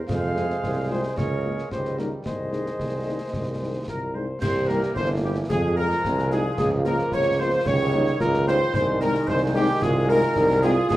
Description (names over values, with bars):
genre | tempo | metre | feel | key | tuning
military-style march for wind band | 111 BPM | 2/4 | straight | Ab major | A4 = 440 Hz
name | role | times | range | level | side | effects
mellow woodwind section | second line | 0.0-11.0 s | G4 to Eb5 | -28 LUFS | equal | none
dark cornet | melody | 0.1-11.0 s | G4 to F5 | -28 LUFS | equal | none
clear trombone section | sustained chords | 0.1-11.0 s | C3 to Bb3 | -33 LUFS | right 1 dB | none
clear tuba | bass | 0.1-11.0 s | G1 to F2 | -26 LUFS | right 1 dB | none
concert snare drum, clash cymbals and concert bass drum | drums | 0.1-11.0 s | none | -31 LUFS | left 1 dB | none
mellow French horn section | accompaniment | 0.4-10.7 s | F3 to F4 | -30 LUFS | left 3 dB | none
mellow euphonium | second line | 2.8-11.0 s | Eb3 to G4 | -29 LUFS | right 2 dB | none
room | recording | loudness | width
moderate large studio reverb, RT60 0.8 s | worn, warbling old tape, cassette tape, warbly pitch drift | -21 LUFS | side -15 dB against mid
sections
0.0-4.4 A section; 4.4-11.0 A section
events
none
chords
0.1 Fm; 1.2 Bbm7/Db; 1.7 Eb7/Db; 2.3 Ab/C; 4.4 C7; 5.5 Fm; 6.6 Bbm/Db; 7.7 Eb7/Db; 8.7 Ab/C